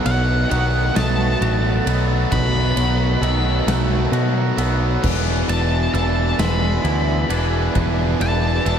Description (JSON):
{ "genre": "post-rock", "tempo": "44 BPM (dotted quarters)", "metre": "6/8", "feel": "straight", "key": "unclear", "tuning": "A4 = 441 Hz", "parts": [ { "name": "evolving wavetable pad", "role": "sustained chords", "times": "0.0-8.8 s", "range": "D#4 to F#5", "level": "-32 LUFS", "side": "equal", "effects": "none" }, { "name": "glockenspiel with soft plastic mallets", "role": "arpeggios", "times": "0.0-8.8 s", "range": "D#6 to A6", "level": "-34 LUFS", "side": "right 7 dB", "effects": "analog delay" }, { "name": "twangy electric guitar", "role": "arpeggios", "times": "0.0-8.8 s", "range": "E2 to F#4", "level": "-28 LUFS", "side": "left 4 dB", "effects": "analog delay" }, { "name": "overdriven electric guitar", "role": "riff", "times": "0.0-8.8 s", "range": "B2 to G#4", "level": "-25 LUFS", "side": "right 11 dB", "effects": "analog chorus" }, { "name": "tight distorted guitar", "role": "riff", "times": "0.0-8.8 s", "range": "E2 to B3", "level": "-26 LUFS", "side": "left 11 dB", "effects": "distortion" }, { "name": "octave-fuzz lead guitar", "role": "melody", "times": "0.1-8.8 s", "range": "F#5 to B5", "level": "-25 LUFS", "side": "equal", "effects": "distortion, analog delay" }, { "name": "growling picked electric bass", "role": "bass", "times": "0.1-8.8 s", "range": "E1 to B2", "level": "-20 LUFS", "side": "equal", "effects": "overdrive" }, { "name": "big rock drum kit", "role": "drums", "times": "0.1-8.8 s", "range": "crash cymbal, kick drum, ride cymbal, snare drum", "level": "-26 LUFS", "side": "right 1 dB", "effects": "none" } ], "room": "light reverb, small room ambience", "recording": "none", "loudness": "-16 LUFS", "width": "side -8 dB against mid", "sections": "0.0-8.8 A section", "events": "none", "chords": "0.0 B7; 5.0 E7", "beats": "0.96 | 2.32 3.68 | 5.04 6.39 | 7.75" }